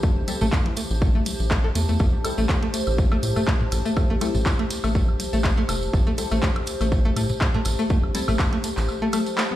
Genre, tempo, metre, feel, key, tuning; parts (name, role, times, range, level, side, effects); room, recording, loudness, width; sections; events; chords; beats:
minimal techno; 122 BPM; 4/4; swing 54% on 16ths; A minor; A4 = 443 Hz
string-like resonator pluck; riff; 0.0-9.6 s; E3 to A4; -27 LUFS; left 1 dB; chorus, sidechain pumping, digital delay
electronic kick drum; drums; 0.0-8.5 s; -22 LUFS; equal; overdrive
tambourine; percussion; 0.0-9.5 s; -35 LUFS; right 3 dB
warbly tape-like pad; texture; 0.0-9.6 s; G4 to A5; -31 LUFS; left 1 dB; chorus, built-in reverb, phaser, sidechain pumping
rubbery square bass; bass; 0.2-8.9 s; E1 to A2; -24 LUFS; equal; sidechain pumping
filtered dub chord stab; stabs; 0.3-8.3 s; G3 to A4; -34 LUFS; left 2 dB; phaser, wide subtle chorus, cassette tape, tape echo
house drum kit; drums; 0.3-9.5 s; handclaps, hi-hat; -28 LUFS; equal; overdrive
electronic toms and woodblock; percussion; 0.3-9.6 s; -32 LUFS; left 1 dB; tape echo
moderate small room reverb, RT60 0.5 s; played on a big sound system in a bare room, stone room reverb; -20 LUFS; side -14 dB against mid
0.0-9.6 A section
kick drops out 8.9-9.6; drum fill 9.4
0.0 Am7
| 0.03 0.53 1.02 1.51 | 2.00 2.49 2.98 3.48 | 3.97 4.46 4.95 5.44 | 5.93 6.43 6.92 7.41 | 7.90 8.39 8.89 9.38